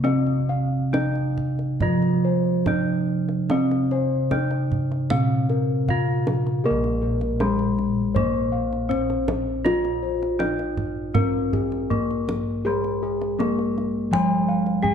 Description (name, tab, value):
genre	Javanese gamelan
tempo	66-86 BPM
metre	4/4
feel	straight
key	Bb slendro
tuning	A4 = 440 Hz
part	gamelan-type bronze metallophone	melody	0.0-14.9 s	Ab3-45c to Ab4-45c	-26 LUFS	left 2 dB	none
part	gamelan-type bronze metallophone	accompaniment	0.0-6.7, 12.7-14.9 s	C3+30c to Ab3-45c	-24 LUFS	right 2 dB	none
part	gamelan-type bossed gongs	arpeggios	0.0-14.9 s	Ab4-45c to Ab5-45c	-28 LUFS	left 5 dB	none
part	gamelan-type bossed gongs	bass	0.0-14.9 s	Bb1 to Bb4	-27 LUFS	equal	none
part	kendang	percussion	0.0-14.9 s	none	-29 LUFS	right 2 dB	none
room	moderate recital hall reverb, RT60 1.5 s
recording	dark, warm production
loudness	-20 LUFS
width	side -8 dB against mid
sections	0.0-6.7 A section; 6.7-14.9 B section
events	none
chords	none